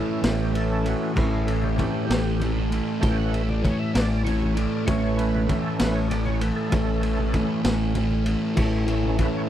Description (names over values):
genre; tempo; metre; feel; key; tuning
psychedelic rock; 65 BPM (dotted quarters); 6/8; straight; A mixolydian; A4 = 440 Hz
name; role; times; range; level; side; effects
overdriven tonewheel organ; sustained chords; 0.0-9.5 s; E3 to G5; -29 LUFS; right 3 dB; slow rotary speaker, chorus vibrato
fuzz guitar; riff; 0.0-9.5 s; A2 to A3; -25 LUFS; left 1 dB; distortion, phaser
deep dub picked electric bass; bass; 0.2-9.3 s; A1; -26 LUFS; equal; none
raw garage drum kit; drums; 0.2-9.3 s; crash cymbal, kick drum, ride cymbal, snare drum; -28 LUFS; equal; none
congas; percussion; 1.2-9.3 s; none; -35 LUFS; left 3 dB; none
room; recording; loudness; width
little or no reverb; dry, close 1970s-style studio recording; -21 LUFS; side -11 dB against mid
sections
0.0-9.5 A section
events
tonewheel organ solo 0.0-9.5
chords
0.0 A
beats
0.24 | 1.17 2.09 | 3.02 3.95 | 4.88 5.80 | 6.73 7.65 | 8.58